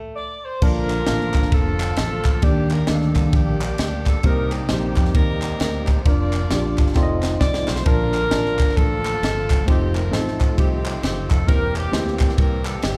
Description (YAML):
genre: uptempo gospel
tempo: 133 BPM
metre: 4/4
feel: swing 61% on 8ths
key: Bb major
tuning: A4 = 439 Hz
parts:
  - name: mellow saxophone section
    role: melody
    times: 0.2-13.0 s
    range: Bb3 to D5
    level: -28 LUFS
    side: equal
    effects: none
  - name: mellow tine electric piano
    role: accompaniment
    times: 0.6-12.6 s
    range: Bb2 to A5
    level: -27 LUFS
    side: equal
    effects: none
  - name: tonewheel organ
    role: sustained chords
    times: 0.6-13.0 s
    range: C3 to G4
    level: -33 LUFS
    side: equal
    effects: slow rotary speaker
  - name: fingered electric bass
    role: bass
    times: 0.6-13.0 s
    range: E1 to F2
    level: -27 LUFS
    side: equal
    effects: none
  - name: crisp fusion drum kit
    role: drums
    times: 0.6-13.0 s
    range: crash cymbal, kick drum, ride cymbal, snare drum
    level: -23 LUFS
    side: equal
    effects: none
  - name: group handclap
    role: percussion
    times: 0.9-12.7 s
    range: none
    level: -38 LUFS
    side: equal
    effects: none
room: moderate recital hall reverb, RT60 1.4 s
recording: recorded in a church or concert hall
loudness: -20 LUFS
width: mono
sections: 0.6-13.0 A section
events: stop 0.0-0.6; drum fill 7.0-7.9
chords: 0.0 N.C.; 0.6 Bbmaj7; 2.4 Ebmaj7; 6.1 Bb/F; 7.0 F7; 7.9 Bbmaj7; 9.7 F7; 11.5 C7/E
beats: 0.17 | 0.62 1.07 1.53 1.98 | 2.43 2.88 3.34 3.79 | 4.24 4.69 5.15 5.60 | 6.05 6.50 6.96 7.41 | 7.86 8.31 8.77 9.22 | 9.67 10.12 10.58 11.03 | 11.48 11.93 12.38 12.84